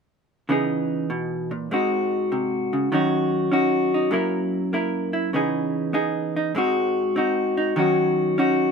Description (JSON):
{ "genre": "solo jazz", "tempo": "99 BPM", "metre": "4/4", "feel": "swing 69% on 8ths", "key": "unclear", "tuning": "A4 = 440 Hz", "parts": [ { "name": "vintage hollow-body jazz guitar", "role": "solo", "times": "0.5-8.7 s", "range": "F#2 to A#4", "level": "-20 LUFS", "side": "equal", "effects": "none" } ], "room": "light reverb", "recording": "minimal, uncompressed stereo recording", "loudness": "-20 LUFS", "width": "side -5 dB against mid", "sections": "0.5-8.7 A section", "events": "none", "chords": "0.5 C#m9; 1.7 G#7; 2.9 D#m7; 4.1 F#7; 5.3 C#m9; 6.5 G#7; 7.7 D#m7" }